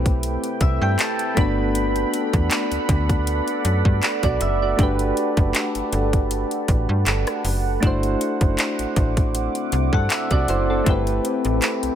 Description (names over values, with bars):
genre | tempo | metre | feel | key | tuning
contemporary R&B | 79 BPM | 4/4 | swing 54% on 16ths | G major | A4 = 440 Hz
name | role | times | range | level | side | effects
soft electric-piano-like synth keys | accompaniment | 0.0-12.0 s | A3 to B5 | -24 LUFS | equal | chorus, tremolo
deep dark ambient pad | sustained chords | 0.0-12.0 s | C4 to D6 | -27 LUFS | right 2 dB | chorus, built-in reverb, sidechain pumping
slap-like FM bass | bass | 0.0-11.9 s | F#1 to G2 | -23 LUFS | equal | none
trap drum kit | drums | 0.1-12.0 s | handclaps, hi-hat, kick drum, rim click | -22 LUFS | equal | none
room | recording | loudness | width
light reverb, digital ambience | none | -18 LUFS | side -10 dB against mid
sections
0.0-12.0 A section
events
synth keys fill 0.2-1.8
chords
0.0 Am9; 1.4 Bm7/G; 4.8 Gmaj9; 7.8 D9; 10.9 Am9/G